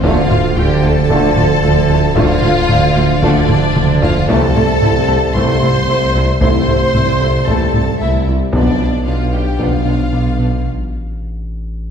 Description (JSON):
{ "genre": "cinematic, hybrid orchestral and electronic film score", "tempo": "113 BPM", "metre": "4/4", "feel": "straight", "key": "A minor", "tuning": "A4 = 441 Hz", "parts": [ { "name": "warm symphonic violin section", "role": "melody", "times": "0.0-10.7 s", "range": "D5 to C6", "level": "-22 LUFS", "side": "left 4 dB", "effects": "none" }, { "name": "warm symphonic violin section", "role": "second line", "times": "0.0-10.7 s", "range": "D4 to C5", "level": "-19 LUFS", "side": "equal", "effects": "none" }, { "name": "warm symphonic viola section", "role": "accompaniment", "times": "0.0-10.5 s", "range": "A3 to F4", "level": "-24 LUFS", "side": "equal", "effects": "none" }, { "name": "clear trombone section", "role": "sustained chords", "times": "0.0-9.8 s", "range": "D3 to B3", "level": "-24 LUFS", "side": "right 1 dB", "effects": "none" }, { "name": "mellow French horn section", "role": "sustained chords", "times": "0.0-9.8 s", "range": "B3 to F4", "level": "-25 LUFS", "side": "left 3 dB", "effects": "none" }, { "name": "harp-like synth pluck", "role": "arpeggios", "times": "0.0-10.5 s", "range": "D3 to B4", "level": "-23 LUFS", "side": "left 3 dB", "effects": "chorus, digital delay" }, { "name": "smooth synth bass", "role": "riff", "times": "0.0-10.5 s", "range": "C2 to B2", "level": "-22 LUFS", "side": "right 1 dB", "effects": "none" }, { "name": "clear tuba", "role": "bass", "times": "0.0-10.6 s", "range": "B1 to D2", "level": "-22 LUFS", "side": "right 3 dB", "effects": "none" }, { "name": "saturated sub bass", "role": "bass", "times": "0.0-11.9 s", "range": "D1 to C2", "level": "-22 LUFS", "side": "equal", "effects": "none" }, { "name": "warm symphonic cello section", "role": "bass", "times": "0.0-10.6 s", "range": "B2 to D3", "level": "-22 LUFS", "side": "right 2 dB", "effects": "none" }, { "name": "warm symphonic double bass section", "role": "bass", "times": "0.0-10.6 s", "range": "B1 to D2", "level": "-19 LUFS", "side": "right 3 dB", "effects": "none" }, { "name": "taiko ensemble", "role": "drums", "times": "0.0-10.1 s", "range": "none", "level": "-18 LUFS", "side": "equal", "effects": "none" } ], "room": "wet scoring stage reverb, RT60 1.6 s", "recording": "heard from further back in the room", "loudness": "-11 LUFS", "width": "side -7 dB against mid", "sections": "0.0-11.9 A section", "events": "drum fill 3.5-4.3; break 10.7-11.9", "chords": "0.0 Dm; 4.3 Am/C; 8.5 Bdim; 10.7 N.C.", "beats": "| 0.04 0.57 1.10 1.63 | 2.16 2.69 3.22 3.75 | 4.28 4.81 5.34 5.88 | 6.41 6.94 7.47 8.00 | 8.53 9.06 9.59 10.12 | 10.65 11.19 11.72" }